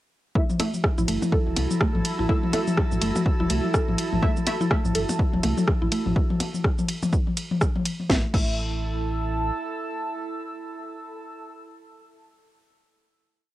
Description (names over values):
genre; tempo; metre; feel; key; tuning
minimal techno; 124 BPM; 4/4; swing 59% on 16ths; unclear; A4 = 440 Hz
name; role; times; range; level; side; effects
filtered dub chord stab; stabs; 0.4-4.5, 8.1-11.4 s; A3 to E5; -31 LUFS; equal; ensemble chorus, tape echo
electronic kick drum; drums; 0.4-8.5 s; none; -24 LUFS; equal; overdrive, cassette tape
swarming drone; texture; 0.8-6.2 s; F#3 to F#4; -37 LUFS; equal; built-in reverb, sidechain pumping
warbly tape-like pad; texture; 0.8-11.4 s; E4 to E6; -32 LUFS; right 3 dB; chorus, built-in reverb, sidechain pumping
garage drum kit; drums; 0.5-8.5 s; cabasa, crash cymbal, hi-hat, ride cymbal, rim click, snare drum; -28 LUFS; equal; cassette tape
electronic toms and percussion blips; percussion; 0.5-8.1 s; none; -27 LUFS; left 3 dB; cassette tape
mallet-like synth pluck; riff; 0.6-8.5 s; A3 to A4; -31 LUFS; right 1 dB; chorus, sidechain pumping, analog delay
round analog bass; bass; 1.0-9.5 s; E1 to C2; -28 LUFS; equal; sidechain pumping
room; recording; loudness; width
light reverb; home recording on cassette; -22 LUFS; side -15 dB against mid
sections
0.4-8.1 drop; 8.1-12.0 final chord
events
drop 0.4-8.1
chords
0.4 A5